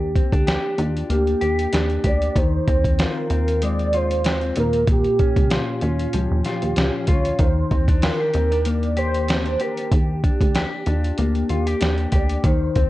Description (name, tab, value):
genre	indie pop, bedroom pop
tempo	95 BPM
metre	4/4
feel	swing 55% on 16ths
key	Eb major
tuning	A4 = 442 Hz
part	warm velvety synth lead	melody	0.0-12.9 s	F4 to D5	-24 LUFS	right 1 dB	lush chorus, tape echo
part	mellow electric guitar	accompaniment	0.0-12.9 s	Bb2 to G4	-25 LUFS	left 3 dB	wide subtle chorus, vibrato effect
part	plucky analog bass	bass	0.0-12.9 s	Db2 to Eb2	-22 LUFS	equal	none
part	dusty soul sampler-style drum kit	drums	0.2-12.9 s	hi-hat, kick drum, snare drum	-21 LUFS	equal	none
room	light reverb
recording	worn, warbling old tape, cassette tape, warbly pitch drift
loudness	-18 LUFS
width	side -16 dB against mid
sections	0.0-12.9 A section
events	none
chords	0.0 Ebmaj7; 2.4 Fm7/Eb; 4.6 Bbm; 7.4 Ebmaj7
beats	0.46 1.09 1.72 | 2.35 2.98 3.61 4.25 | 4.88 5.50 6.13 6.77 | 7.40 8.03 8.66 9.29 | 9.92 10.55 11.18 11.81 | 12.44